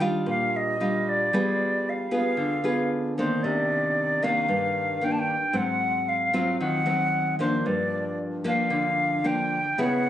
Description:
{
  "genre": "bossa nova",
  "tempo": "114 BPM",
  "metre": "4/4",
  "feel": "straight",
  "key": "unclear",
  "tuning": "A4 = 440 Hz",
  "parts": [
    { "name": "nylon-string guitar", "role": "accompaniment", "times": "0.0-10.1 s", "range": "G2 to Ab4", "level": "-26 LUFS", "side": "equal", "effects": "none" },
    { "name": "silver concert flute", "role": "melody", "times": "0.3-10.1 s", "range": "C5 to A5", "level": "-25 LUFS", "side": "equal", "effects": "none" }
  ],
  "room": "moderate studio reverb, RT60 0.5 s",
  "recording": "recorded on a phone in the room, club reverb, compression, nothing above 10.6 kHz",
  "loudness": "-23 LUFS",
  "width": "side -11 dB against mid",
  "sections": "0.0-10.1 A section",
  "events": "none",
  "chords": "0.0 Ebmaj9; 1.3 G7b9; 3.4 Cm9; 5.5 Ab13; 7.7 Gm7"
}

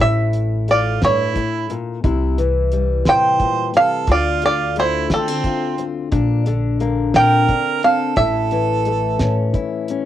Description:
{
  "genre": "acoustic folk duo or small band",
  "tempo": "59 BPM (dotted quarters)",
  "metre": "6/8",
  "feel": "straight",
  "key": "unclear",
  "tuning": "A4 = 439 Hz",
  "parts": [
    { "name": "bluegrass banjo", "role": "melody", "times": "0.0-9.5 s", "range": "A4 to G5", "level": "-17 LUFS", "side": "right 1 dB", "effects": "cassette tape" },
    { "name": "fingerpicked steel-string acoustic guitar", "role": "accompaniment", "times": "0.0-10.1 s", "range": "D2 to F4", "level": "-22 LUFS", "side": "left 6 dB", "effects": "cassette tape" },
    { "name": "upright bass", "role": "bass", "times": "0.0-9.5 s", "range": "A1 to D3", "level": "-20 LUFS", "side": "equal", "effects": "none" },
    { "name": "cloth-damped thuddy drum kit", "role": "drums", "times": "0.3-10.0 s", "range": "hi-hat, kick drum, snare drum", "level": "-22 LUFS", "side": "equal", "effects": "cassette tape" },
    { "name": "warm harmonica", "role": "second line", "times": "0.7-9.5 s", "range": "C4 to C5", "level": "-22 LUFS", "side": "right 8 dB", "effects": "cassette tape" }
  ],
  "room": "little or no reverb",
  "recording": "home recording on cassette",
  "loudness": "-15 LUFS",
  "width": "side -12 dB against mid",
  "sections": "0.0-10.1 A section",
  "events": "none",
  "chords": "0.0 A; 2.0 C; 4.1 Dm7; 6.1 Bbadd9; 8.2 A"
}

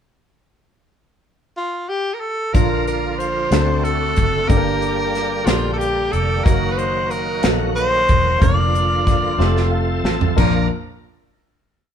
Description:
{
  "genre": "slow gospel",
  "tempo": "61 BPM (dotted quarters)",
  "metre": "6/8",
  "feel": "straight",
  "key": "Bb major",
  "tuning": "A4 = 441 Hz",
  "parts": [
    { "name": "breathy tenor saxophone", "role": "melody", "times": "1.6-10.7 s", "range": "F4 to D5", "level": "-21 LUFS", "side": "equal", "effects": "none" },
    { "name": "warm baby grand piano", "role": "accompaniment", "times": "2.5-10.7 s", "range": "Bb1 to A5", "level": "-24 LUFS", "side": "left 4 dB", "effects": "none" },
    { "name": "bright tonewheel organ", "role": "sustained chords", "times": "2.5-10.7 s", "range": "D3 to Bb4", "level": "-25 LUFS", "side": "right 2 dB", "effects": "slow rotary speaker, overdrive, chorus vibrato" },
    { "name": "fingered electric bass", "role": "bass", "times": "2.5-10.7 s", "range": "E1 to D2", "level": "-22 LUFS", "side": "equal", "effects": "none" },
    { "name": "tight funk drum kit", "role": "drums", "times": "2.5-10.5 s", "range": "crash cymbal, hi-hat, kick drum, snare drum, toms", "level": "-19 LUFS", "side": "equal", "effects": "none" }
  ],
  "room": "moderate stone room reverb, RT60 1.0 s",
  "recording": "band playing live in one room",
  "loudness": "-16 LUFS",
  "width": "side -8 dB against mid",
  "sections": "0.6-2.5 pickup bar; 2.5-10.4 verse; 10.4-11.9 final chord",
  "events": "drum fill 9.4-10.4; grand piano fill 9.4-10.4",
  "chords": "0.6 N.C.; 2.5 Bb; 3.5 D7; 4.5 Gm; 6.5 Ebm/Gb; 8.4 Bb/F; 9.4 F; 10.4 Bb"
}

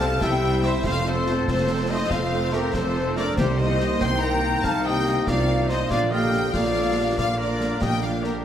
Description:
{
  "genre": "cinematic, heroic adventure film score",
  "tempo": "95 BPM (dotted quarters)",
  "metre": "12/8",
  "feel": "straight",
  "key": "unclear",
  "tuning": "A4 = 437 Hz",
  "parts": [
    { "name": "clear symphonic violin section", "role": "melody", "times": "0.0-8.3 s", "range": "Bb4 to C6", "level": "-30 LUFS", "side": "left 4 dB", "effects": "none" },
    { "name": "clear oboe", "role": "second line", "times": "0.0-8.4 s", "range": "G4 to G5", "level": "-33 LUFS", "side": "right 1 dB", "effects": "none" },
    { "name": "clear symphonic violin section", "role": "second line", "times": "0.0-8.4 s", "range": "Bb4 to C6", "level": "-33 LUFS", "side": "left 2 dB", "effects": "none" },
    { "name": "dark clarinet", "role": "second line", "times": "0.0-8.4 s", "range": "D4 to A4", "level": "-32 LUFS", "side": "left 3 dB", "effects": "none" },
    { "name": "mellow hollow flute section", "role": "second line", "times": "0.0-8.4 s", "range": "Bb4 to C6", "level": "-33 LUFS", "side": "left 2 dB", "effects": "none" },
    { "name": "rich symphonic viola section", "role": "accompaniment", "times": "0.0-8.4 s", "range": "D3 to D4", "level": "-33 LUFS", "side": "right 2 dB", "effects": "none" },
    { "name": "dark trombone section", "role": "sustained chords", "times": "0.0-8.4 s", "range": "D3 to C4", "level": "-35 LUFS", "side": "right 2 dB", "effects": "none" },
    { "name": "mellow French horn section", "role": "sustained chords", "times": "0.0-8.4 s", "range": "Bb3 to C5", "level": "-30 LUFS", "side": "left 4 dB", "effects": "none" },
    { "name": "dark trumpet section", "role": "stabs", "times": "0.0-8.4 s", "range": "G4 to G5", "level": "-29 LUFS", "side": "equal", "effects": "none" },
    { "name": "clear symphonic double bass section", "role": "bass", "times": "0.0-8.4 s", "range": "F1 to C2", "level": "-28 LUFS", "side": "right 3 dB", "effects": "none" },
    { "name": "rich symphonic cello section", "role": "bass", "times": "0.0-8.4 s", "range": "F2 to C3", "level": "-29 LUFS", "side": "right 2 dB", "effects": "none" },
    { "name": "concert snare drum, concert bass drum and clash cymbals", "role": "drums", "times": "0.0-8.4 s", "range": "none", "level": "-32 LUFS", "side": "equal", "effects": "none" },
    { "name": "timpani", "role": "percussion", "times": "3.4-4.0 s", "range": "C3", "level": "-30 LUFS", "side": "left 1 dB", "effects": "none" }
  ],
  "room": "wet scoring stage reverb, RT60 1.6 s",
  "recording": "none",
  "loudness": "-20 LUFS",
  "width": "side -10 dB against mid",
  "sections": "0.0-8.4 A section",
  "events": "none",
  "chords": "0.0 C; 0.8 F; 3.4 Cm7; 5.9 Bb"
}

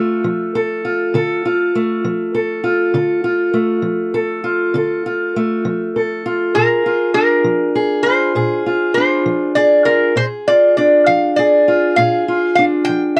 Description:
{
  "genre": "acoustic country blues, solo or duo",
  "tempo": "66 BPM (dotted quarters)",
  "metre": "12/8",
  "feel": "straight",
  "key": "D minor",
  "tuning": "A4 = 443 Hz",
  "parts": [
    { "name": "lap resonator guitar", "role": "melody", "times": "0.0-0.5, 6.5-13.2 s", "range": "Bb4 to A5", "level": "-16 LUFS", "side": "equal", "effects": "none" },
    { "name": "fingerpicked steel-string acoustic guitar", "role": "accompaniment", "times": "0.0-13.2 s", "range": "Bb2 to A4", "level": "-18 LUFS", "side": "equal", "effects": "none" }
  ],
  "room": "light reverb",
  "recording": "cassette tape",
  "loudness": "-16 LUFS",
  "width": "mono",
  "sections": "0.0-13.2 A section",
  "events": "none",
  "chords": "0.0 Dm; 6.5 Bb7"
}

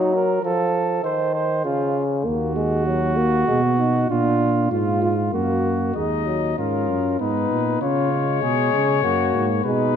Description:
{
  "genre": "classical, imitative canzona for brass ensemble",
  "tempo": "98 BPM",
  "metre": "3/4",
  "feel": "straight",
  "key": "Eb minor",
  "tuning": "A4 = 442 Hz",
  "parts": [
    { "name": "mellow flugelhorn", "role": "second line", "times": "0.0-10.0 s", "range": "Eb4 to C5", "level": "-24 LUFS", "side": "right 2 dB", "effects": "none" },
    { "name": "warm euphonium", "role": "accompaniment", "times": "0.0-10.0 s", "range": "Db3 to F4", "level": "-23 LUFS", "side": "left 2 dB", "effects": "none" },
    { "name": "dark bass trombone", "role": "bass", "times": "2.2-10.0 s", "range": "Eb2 to Db3", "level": "-23 LUFS", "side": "right 2 dB", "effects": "none" },
    { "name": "dark trumpet", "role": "melody", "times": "6.0-10.0 s", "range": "Bb4 to Eb5", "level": "-24 LUFS", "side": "left 13 dB", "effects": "none" }
  ],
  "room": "moderate concert hall reverb, RT60 2.4 s",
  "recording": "dark, warm production",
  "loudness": "-18 LUFS",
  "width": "side -8 dB against mid",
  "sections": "0.0-6.0 A section; 6.0-10.0 B section",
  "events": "none",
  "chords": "0.4 F; 1.6 Db; 2.3 Ebm; 3.5 Abm/Cb; 4.1 Bb; 5.3 Gb; 6.0 Ebm; 7.2 Abm; 7.8 Db; 9.0 Gb"
}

